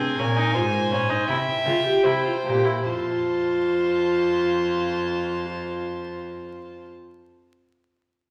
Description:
classical, baroque-style fugue for string quartet; 73-85 BPM; 4/4; straight; A4 = 440 Hz
rich violin; melody; 0.0-6.9 s; G5 to A5; -34 LUFS; equal
warm violin; second line; 0.0-6.9 s; Ab4 to E5; -32 LUFS; equal
warm viola; accompaniment; 0.0-6.9 s; C4 to G4; -26 LUFS; equal
warm cello; bass; 0.2-6.9 s; F2 to Db3; -32 LUFS; equal
wet recital hall reverb, RT60 1.5 s; vinyl crackle; -23 LUFS; mono
0.0-2.9 A section; 2.9-6.1 B section
slowing down 0.0-2.9
0.0 Fm (rootless); 1.3 C7; 2.9 F

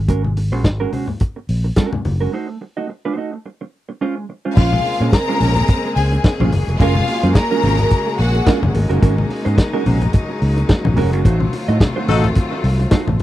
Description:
disco; 108 BPM; 4/4; swing 56% on 16ths; Bb minor; A4 = 440 Hz
fingered electric bass; bass; 0.0-13.2 s; F1 to Bb2; -17 LUFS; equal
mellow electric guitar; accompaniment; 0.1-13.2 s; Ab3 to Eb5; -22 LUFS; right 5 dB
warm soul drum kit; drums; 0.1-13.2 s; crash cymbal, hi-hat, kick drum, snare drum; -14 LUFS; equal
congas; percussion; 0.1-13.2 s; -24 LUFS; left 4 dB
clear studio string section; second line; 4.6-8.7 s; F4 to Bb5; -20 LUFS; left 2 dB
clear studio string section; sustained chords; 4.6-13.2 s; Db3 to Ab4; -23 LUFS; left 1 dB
clear horn section; stabs; 12.1-12.3 s; Eb4 to A4; -22 LUFS; left 6 dB; tape echo
little or no reverb; dry, close 1970s-style studio recording; -14 LUFS; side -14 dB against mid
0.0-4.6 A section; 4.6-13.2 B section
break 2.3-4.6; band accent 11.2-13.2
0.0 Ab9sus4; 2.3 Adim7; 3.5 Abadd11; 4.6 Bbm9; 6.5 Gbmaj9; 8.7 Ab9sus4; 11.2 F7b9/A

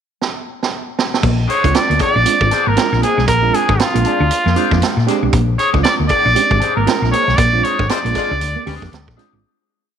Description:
funk; 117 BPM; 4/4; swing 60% on 16ths; Bb mixolydian; A4 = 440 Hz
vintage drum kit; drums; 0.2-9.3 s; crash cymbal, hi-hat, kick drum, snare drum; -20 LUFS; right 4 dB
mellow electric guitar; riff; 1.2-9.4 s; Ab3 to D4; -26 LUFS; right 11 dB
hollow-body short-scale fingered electric bass; bass; 1.2-9.4 s; Ab1 to Bb2; -17 LUFS; left 2 dB
clear trumpet; melody; 1.5-9.2 s; F4 to D5; -16 LUFS; right 2 dB
electric guitar at the edge of break-up; accompaniment; 1.5-9.4 s; D4 to D5; -24 LUFS; left 13 dB; wah, spring reverb
reed electric piano; stabs; 1.6-9.4 s; Ab3 to G4; -23 LUFS; right 10 dB; fast tremolo
warm horn section; second line; 7.9-8.3 s; Ab3 to D5; -25 LUFS; left 12 dB
light reverb, small room ambience; 1960s-style stereo with parts hard left and right; -13 LUFS; side -8 dB against mid
0.0-1.2 pickup bar; 1.2-9.4 A section
drum fill 0.2-1.2; fade-out 7.4-9.4; band accent 7.4-9.4
0.0 N.C.; 1.2 Bb9

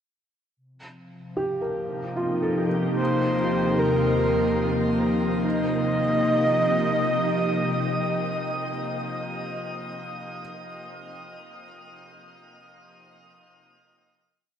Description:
ambient; 74 BPM; 3/4; straight; Eb lydian; A4 = 439 Hz
glassy FM pad; sustained chords; 1.3-8.7 s; Eb2 to G4; -26 LUFS; equal; ensemble chorus, built-in reverb
felt-muted upright piano; arpeggios; 1.4-10.4 s; Eb4 to Bb4; -32 LUFS; right 1 dB; diffuse ambient delay
breathy flute-like synth lead; melody; 3.0-8.7 s; Bb4 to Eb5; -26 LUFS; equal; chorus, diffuse ambient delay
wet shimmer reverb, RT60 8.8 s; dark, warm production; -22 LUFS; side -8 dB against mid
0.6-5.4 A section; 5.4-7.9 final chord
filter sweep on ambient pad 0.6-5.4
0.6 Eb; 3.0 Fsus4/Eb; 5.4 Eb

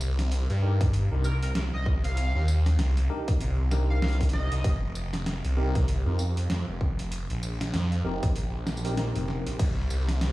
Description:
glitch hop; 97 BPM; 4/4; swing 59% on 16ths; A4 = 440 Hz
phased detuned saw bass; bass; 0.0-10.3 s; F1 to G2; -26 LUFS; equal; phaser
boom bap sampler-style drum kit; drums; 0.0-10.3 s; crash cymbal, hi-hat, snare drum, tambourine; -34 LUFS; equal; overdrive, studio reverb
tine electric piano; stabs; 0.6-9.6 s; C4 to Bb4; -36 LUFS; equal; medium stereo tremolo, sidechain pumping, dub echo
electronic kick drum; drums; 0.8-9.7 s; -27 LUFS; equal; studio reverb
sync lead; melody; 1.2-4.7 s; Bb4 to F5; -38 LUFS; equal; wide subtle chorus, cassette tape, dub echo
digital ambience; played on a big sound system in a bare room, stone room reverb, small room ambience; -24 LUFS; side -18 dB against mid
0.0-10.3 A section
kick drops out 9.0-9.6
0.0 Cm7; 4.6 F7sus4; 9.6 N.C.

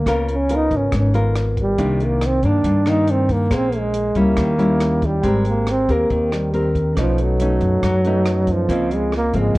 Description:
bossa nova; 139 BPM; 4/4; straight; A4 = 440 Hz
dark trombone; melody; 0.0-9.6 s; F3 to Eb4; -20 LUFS; right 1 dB
nylon-string guitar; accompaniment; 0.0-9.6 s; G2 to C5; -22 LUFS; left 2 dB
upright bass; bass; 0.1-9.6 s; Ab1 to G2; -21 LUFS; equal
compact cocktail drum kit; drums; 0.1-9.6 s; hi-hat, kick drum, rim click; -26 LUFS; equal
tine electric piano; accompaniment; 5.2-9.6 s; C4 to Bb5; -29 LUFS; right 4 dB
light reverb; worn, warbling old tape, cassette tape, warbly pitch drift; -16 LUFS; side -20 dB against mid
0.0-9.6 A section
0.1 Db6; 1.8 Cm9; 3.5 Bbm9; 4.4 Eb7b9; 5.2 Abmaj9; 7.0 B9; 8.7 Dbmaj13

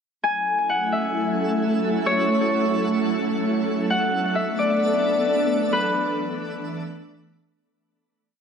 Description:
hip hop, atmospheric cloud-rap; 131 BPM; 4/4; half-time; F# minor; A4 = 440 Hz
Celtic harp; melody; 0.2-7.8 s; B4 to G#5; -23 LUFS; left 2 dB; low-pass filter, ping-pong delay
ethereal airy pad; sustained chords; 0.5-7.5 s; E3 to A4; -24 LUFS; equal; ensemble chorus, built-in reverb
twinkling granular texture; texture; 0.9-7.5 s; A3 to E5; -31 LUFS; right 2 dB; built-in reverb
moderate shimmer reverb, RT60 8.8 s; -20 LUFS; side -6 dB against mid
0.2-7.6 breakdown
fade-out 5.7-7.6
0.2 F#m7; 3.9 Bm7; 5.7 E7sus4

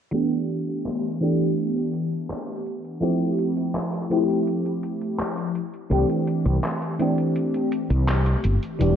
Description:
vaporwave; 83 BPM; 4/4; straight; G mixolydian; A4 = 436 Hz
FM electric piano with soft pad layer; accompaniment; 0.1-9.0 s; E3 to G4; -23 LUFS; equal; phaser, lush chorus, cassette tape, analog delay
detuned 8-bit digital drum machine; drums; 0.1-9.0 s; handclaps, hi-hat; -32 LUFS; equal; studio reverb, gated reverb
woody fretless electric bass; bass; 5.9-8.9 s; E1 to C2; -20 LUFS; equal; ensemble chorus
light reverb; cassette tape, low-pass filter, nothing above 10.3 kHz; -22 LUFS; side -8 dB against mid
0.1-9.0 A section
filter sweep 0.1-9.0
0.1 G6; 3.0 Fmaj9; 5.6 C69

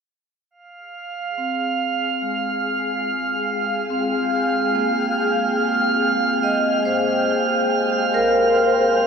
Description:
ambient; 71 BPM; 4/4; straight; F minor; A4 = 440 Hz
granular cloud pad; sustained chords; 1.6-9.1 s; Ab4 to G5; -24 LUFS; left 2 dB; built-in reverb, shimmer reverb
drifting glass-harmonics texture; texture; 0.8-9.1 s; F5; -22 LUFS; right 4 dB; chorus, built-in reverb, shimmer reverb
vibraphone with medium hard mallets; arpeggios; 1.4-9.1 s; Ab3 to Eb5; -22 LUFS; left 1 dB; diffuse ambient delay, shimmer reverb
wet huge ambient reverb, RT60 8.3 s; dark, warm production; -18 LUFS; side -6 dB against mid
0.5-9.1 A section
fade-in on ambient pad 0.5-9.1; fade-in on vibraphone 0.5-9.1
0.5 Fmadd9; 7.3 C5

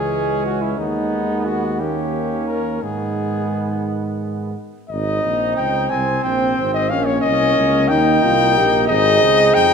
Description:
classical, brass quintet; 60 BPM (dotted quarters); 6/8; straight; G# minor, Ab major from 4.9 s; A4 = 440 Hz
warm trumpet; melody; 0.0-9.7 s; D#4 to Ab5; -19 LUFS; left 5 dB
warm trumpet; second line; 0.0-9.7 s; B3 to Eb4; -24 LUFS; right 6 dB
mellow trombone; accompaniment; 0.0-9.7 s; D#3 to C4; -27 LUFS; right 2 dB
warm French horn; accompaniment; 0.0-9.7 s; G#3 to Ab4; -22 LUFS; left 1 dB
mellow tuba; bass; 0.0-9.7 s; Ab1 to G#2; -23 LUFS; right 4 dB
wet scoring stage reverb, RT60 1.9 s; minimal, uncompressed stereo recording; -16 LUFS; side -6 dB against mid
0.0-4.9 A section; 4.9-9.7 A section
0.0 C#m; 0.8 G#m/D#; 1.8 D#7; 2.8 G#m; 4.9 Ab; 6.9 Eb7/Bb; 8.9 Ab

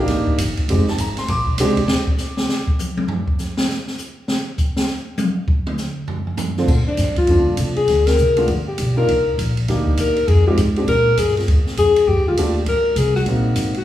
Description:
jazz, small-group swing and bop; 200 BPM; 4/4; swing 63% on 8ths; Bb major; A4 = 441 Hz
warm grand piano; accompaniment; 0.0-1.8, 6.6-13.7 s; D3 to D6; -22 LUFS; right 1 dB
upright bass; bass; 0.0-2.1, 6.7-13.8 s; F1 to Bb2; -19 LUFS; equal
open jazz drum kit; drums; 0.1-13.8 s; crash cymbal, hi-hat, kick drum, ride cymbal, snare drum, toms; -22 LUFS; equal
breathy alto saxophone; melody; 6.9-13.8 s; D4 to Bb4; -18 LUFS; left 3 dB
wet recital hall reverb, RT60 1.5 s; recorded in a church or concert hall, small room ambience; -16 LUFS; side -12 dB against mid
0.0-6.7 A section; 6.7-13.8 B section
drum solo 1.9-6.7; band accent 8.0
0.0 Cm9 (rootless); 0.7 Fm7; 1.3 Bb13; 1.9 N.C.; 6.1 F; 6.7 Bbmaj7; 7.9 Dm7; 8.5 G7; 9.1 Cm9; 10.3 Fm7; 10.9 Gm; 11.5 Ebmaj9#11; 12.7 Ab9

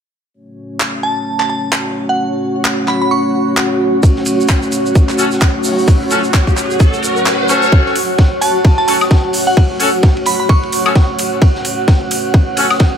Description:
bass house; 130 BPM; 4/4; swing 58% on 16ths; F# minor; A4 = 441 Hz
dark analog pad; sustained chords; 0.3-13.0 s; A3 to C#5; -21 LUFS; left 1 dB; chorus, sidechain pumping
granular cloud pad; texture; 1.8-13.0 s; F#4 to F#5; -18 LUFS; right 1 dB; built-in reverb, sidechain pumping
garage drum kit; drums; 0.8-12.8 s; handclaps, hi-hat, woodblock; -19 LUFS; equal; high-pass filter on snare, high-pass filter on hats, high-pass filter on perc, high-pass filter on room
glassy synth bell; melody; 1.0-3.6, 8.4-11.0 s; F#5 to C#6; -19 LUFS; right 2 dB; chorus, ping-pong delay
crunchy breakbeat drum kit; drums; 4.0-12.9 s; hi-hat, ride cymbal, snare drum; -27 LUFS; equal; sidechain pumping on cymbals, high-pass filter on cymbals, sidechain pumping on hats, high-pass filter on hats, high-pass filter on snare, high-pass filter on room
electronic kick drum; drums; 4.0-12.9 s; -10 LUFS; equal
tube shaker; percussion; 4.0-7.7 s; -24 LUFS; right 4 dB
riser; sound effects; 5.6-7.7 s; -22 LUFS; right 1 dB
warm horn section; stabs; 5.2-12.7 s; C#4 to A4; -19 LUFS; left 3 dB; sidechain pumping, ping-pong delay
light reverb, studio reverb; -11 LUFS; side -8 dB against mid
0.3-7.7 A section; 7.7-13.0 B section
riser 5.6-7.7; kick drops out 7.3-7.7; build-up 7.7-13.0; filter sweep on analog synth pad 7.7-13.0
0.3 F#m

